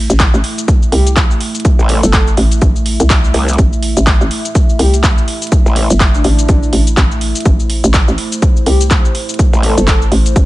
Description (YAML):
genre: bass house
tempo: 124 BPM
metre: 4/4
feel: swing 59% on 16ths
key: A minor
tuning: A4 = 440 Hz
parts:
  - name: dark analog pad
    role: sustained chords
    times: 0.0-10.5 s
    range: A3 to E5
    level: -22 LUFS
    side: right 2 dB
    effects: chorus, sidechain pumping
  - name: hollow knocking FM bass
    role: bass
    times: 0.0-10.5 s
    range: G1 to C2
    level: -13 LUFS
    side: equal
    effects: tube saturation, sidechain pumping
  - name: house drum kit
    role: drums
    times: 0.1-10.5 s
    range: handclaps, hi-hat, shaker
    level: -18 LUFS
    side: equal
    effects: overdrive
  - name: electronic kick drum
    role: drums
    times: 0.2-10.5 s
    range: none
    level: -11 LUFS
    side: equal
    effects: overdrive
  - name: breathy flute-like synth lead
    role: melody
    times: 0.9-10.0 s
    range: D4 to A4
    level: -22 LUFS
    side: left 1 dB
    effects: lush chorus, ping-pong delay
  - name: growl bass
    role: bass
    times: 1.8-5.9, 9.5-9.8 s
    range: A1 to C2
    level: -12 LUFS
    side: equal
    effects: chorus, overdrive, sidechain pumping
room: little or no reverb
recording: nothing above 10.5 kHz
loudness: -9 LUFS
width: side -17 dB against mid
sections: 0.0-10.5 A section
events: none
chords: 0.0 A5